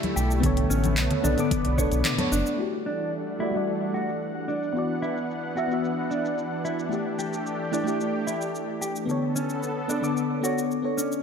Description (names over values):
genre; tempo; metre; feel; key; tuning
sunset chillout; 111 BPM; 4/4; straight; unclear; A4 = 440 Hz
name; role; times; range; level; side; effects
mellow FM electric piano; accompaniment; 0.0-11.2 s; D3 to D6; -27 LUFS; left 2 dB; chorus, phaser, auto-pan, low-pass filter, digital delay
lush unison pad; sustained chords; 0.0-11.2 s; D3 to F#5; -31 LUFS; right 1 dB; chorus
deep house drum kit; drums; 0.0-11.2 s; handclaps, hi-hat, shaker, toms; -31 LUFS; equal; low-pass filter on hats, low-pass filter on toms, low-pass filter on perc, low-pass filter on snare
congas; percussion; 0.0-2.3 s; none; -32 LUFS; left 2 dB; none
mellow electric guitar; arpeggios; 0.2-11.2 s; C#4 to C#5; -32 LUFS; equal; low-pass filter, digital delay
round analog bass; bass; 0.2-2.4 s; F#1 to B1; -25 LUFS; equal; none
electronic kick drum; drums; 0.4-1.9 s; none; -28 LUFS; equal; none
room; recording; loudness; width
moderate lush hall reverb, RT60 1.9 s, digital ambience; none; -24 LUFS; side -6 dB against mid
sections
0.0-2.6 A section; 2.6-11.2 B section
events
band accent 2.1; filter sweep on FM electric piano 2.6-11.2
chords
0.4 Bm9; 2.6 Em11; 4.5 D69; 6.9 A7sus4; 9.1 Bm9